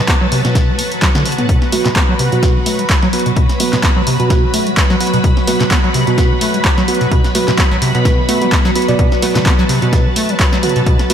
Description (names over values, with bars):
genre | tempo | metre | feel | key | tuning
acid house | 128 BPM | 4/4 | swing 55% on 16ths | unclear | A4 = 438 Hz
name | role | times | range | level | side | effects
string machine, full ensemble | sustained chords | 0.0-11.1 s | F#3 to B5 | -19 LUFS | equal | ensemble chorus, sidechain pumping
deep acid bass | riff | 0.1-11.1 s | B2 to B3 | -18 LUFS | equal | tube saturation, lush chorus, sidechain pumping, analog delay
electronic kick drum | drums | 0.1-11.0 s | none | -14 LUFS | equal | none
punchy analog drum machine | drums | 0.1-11.1 s | handclaps, hi-hat, snare drum, toms | -19 LUFS | equal | none
deep mellow chord stab | stabs | 1.7-11.1 s | B3 to D5 | -20 LUFS | right 4 dB | chorus, cassette tape, analog delay
room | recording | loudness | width
moderate lush hall reverb, RT60 1.7 s | dreamy mix soaked in reverb | -11 LUFS | side -8 dB against mid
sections
0.0-11.1 A section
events
drum fill 1.0-1.5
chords
0.0 B5